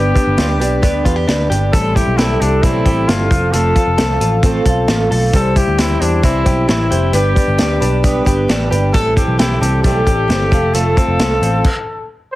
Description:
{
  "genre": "jangly indie pop",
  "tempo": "133 BPM",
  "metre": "4/4",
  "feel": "straight",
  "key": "unclear",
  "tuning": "A4 = 442 Hz",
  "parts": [
    { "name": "warm trumpet", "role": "melody", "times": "0.0-12.4 s", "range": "D4 to C5", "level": "-19 LUFS", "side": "left 2 dB", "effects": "slapback echo" },
    { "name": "fingerpicked twelve-string acoustic guitar", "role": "accompaniment", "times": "0.0-11.7 s", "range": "A2 to C5", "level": "-20 LUFS", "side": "right 3 dB", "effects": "none" },
    { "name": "direct-recorded clean electric guitar", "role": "arpeggios", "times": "0.0-11.7 s", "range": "E3 to A4", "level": "-20 LUFS", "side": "left 2 dB", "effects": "lush chorus" },
    { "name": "vintage muted picked electric bass", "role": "bass", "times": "0.0-11.6 s", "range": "F1 to E2", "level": "-17 LUFS", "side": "equal", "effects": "none" },
    { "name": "vintage drum kit", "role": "drums", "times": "0.2-11.8 s", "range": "crash cymbal, hi-hat, kick drum, snare drum", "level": "-17 LUFS", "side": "equal", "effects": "none" }
  ],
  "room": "light reverb",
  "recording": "heavily compressed radio sound",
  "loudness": "-12 LUFS",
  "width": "side -16 dB against mid",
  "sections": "0.0-12.4 A section",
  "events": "stop 11.6-12.4",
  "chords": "0.0 G; 1.7 Am7; 3.3 F; 5.3 C; 7.1 G; 8.9 Am7; 10.5 F",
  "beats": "0.38 0.83 1.28 | 1.73 2.18 2.63 3.08 | 3.53 3.98 4.43 4.88 | 5.33 5.79 6.24 6.69 | 7.14 7.59 8.04 8.49 | 8.94 9.39 9.84 10.29 | 10.75 11.20 11.65 12.10"
}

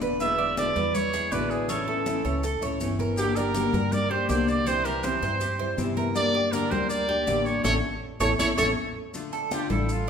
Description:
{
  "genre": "latin, Cuban son and guajira",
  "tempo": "161 BPM",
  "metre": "4/4",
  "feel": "straight",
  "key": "D minor",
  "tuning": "A4 = 441 Hz",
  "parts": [
    { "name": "nylon-string guitar", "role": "accompaniment", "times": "0.0-9.9 s", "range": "B2 to G4", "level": "-29 LUFS", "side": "left 3 dB", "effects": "none" },
    { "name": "Cuban tres", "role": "arpeggios", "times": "0.0-10.1 s", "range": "C4 to D5", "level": "-31 LUFS", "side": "right 3 dB", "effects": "none" },
    { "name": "upright bass", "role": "bass", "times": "0.0-10.1 s", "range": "E1 to G2", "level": "-32 LUFS", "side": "equal", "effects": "none" },
    { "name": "congas", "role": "percussion", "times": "0.0-10.1 s", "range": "none", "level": "-33 LUFS", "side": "left 3 dB", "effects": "none" },
    { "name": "maracas", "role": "percussion", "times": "0.0-10.1 s", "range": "none", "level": "-41 LUFS", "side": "left 3 dB", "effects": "none" },
    { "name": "warm trumpet", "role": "melody", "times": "0.2-10.1 s", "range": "E4 to E5", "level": "-27 LUFS", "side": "right 2 dB", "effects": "none" }
  ],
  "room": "wet large studio reverb, RT60 1.5 s",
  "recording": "band playing live in one room",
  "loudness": "-23 LUFS",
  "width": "side -7 dB against mid",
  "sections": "0.0-9.1 A section",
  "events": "band accent 7.6-9.1",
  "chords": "0.2 E7; 1.7 A; 3.2 Gm; 4.7 C; 6.2 Gm; 7.6 A; 9.1 Dm",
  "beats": "| 0.20 0.58 0.95 1.32 | 1.69 2.06 2.44 2.81 | 3.18 3.55 3.92 4.30 | 4.67 5.04 5.41 5.79 | 6.16 6.53 6.90 7.28 | 7.65 8.02 8.39 8.77 | 9.14 9.52 9.89"
}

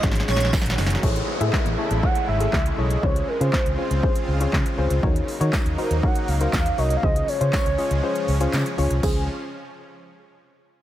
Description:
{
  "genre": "dance-pop",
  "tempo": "120 BPM",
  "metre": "4/4",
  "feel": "straight",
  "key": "Db major",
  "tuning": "A4 = 439 Hz",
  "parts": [
    { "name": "soft round pluck", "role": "accompaniment", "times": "0.0-9.3 s", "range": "Db4 to E5", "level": "-28 LUFS", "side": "left 4 dB", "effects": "chorus, sidechain pumping" },
    { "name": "supersaw pad", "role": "sustained chords", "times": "0.0-9.3 s", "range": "C#3 to Gb4", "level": "-31 LUFS", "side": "right 1 dB", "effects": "sidechain pumping" },
    { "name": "vintage muted fingered electric bass", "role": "bass", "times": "0.0-9.3 s", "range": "Gb1 to Eb3", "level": "-23 LUFS", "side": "equal", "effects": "sidechain pumping" },
    { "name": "deep house drum kit", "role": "drums", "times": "0.0-9.1 s", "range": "crash cymbal, handclaps, hi-hat, kick drum, shaker, snare drum", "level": "-23 LUFS", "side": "equal", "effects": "none" },
    { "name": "airy dreamy lead", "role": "melody", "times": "0.3-0.5 s", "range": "Db5", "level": "-29 LUFS", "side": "right 4 dB", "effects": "chorus, digital delay" },
    { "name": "tambourine", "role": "percussion", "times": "0.5-0.6, 5.5-9.3 s", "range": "none", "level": "-40 LUFS", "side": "right 7 dB", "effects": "none" },
    { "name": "downlifter", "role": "sound effects", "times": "1.0-5.0 s", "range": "none", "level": "-32 LUFS", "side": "equal", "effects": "none" },
    { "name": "warm velvety synth lead", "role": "melody", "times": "1.8-9.3 s", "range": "Ab4 to Gb5", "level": "-27 LUFS", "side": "right 1 dB", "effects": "chorus, digital delay" }
  ],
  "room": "little or no reverb",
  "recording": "none",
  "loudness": "-19 LUFS",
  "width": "side -13 dB against mid",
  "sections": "0.0-1.0 A section; 1.0-9.0 B section; 9.0-10.8 C section",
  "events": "drop 0.0-1.0; drum fill 0.0-1.0; kick muted 8.0-9.0",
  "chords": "0.0 Ab7sus4; 1.0 Amaj7; 3.0 Dbmaj7; 5.0 Ebm7; 7.0 Dbmaj7",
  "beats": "0.03 0.53 | 1.03 1.53 2.03 2.53 | 3.03 3.53 4.03 4.53 | 5.03 5.53 6.03 6.53 | 7.03 7.53 8.03 8.53 | 9.03"
}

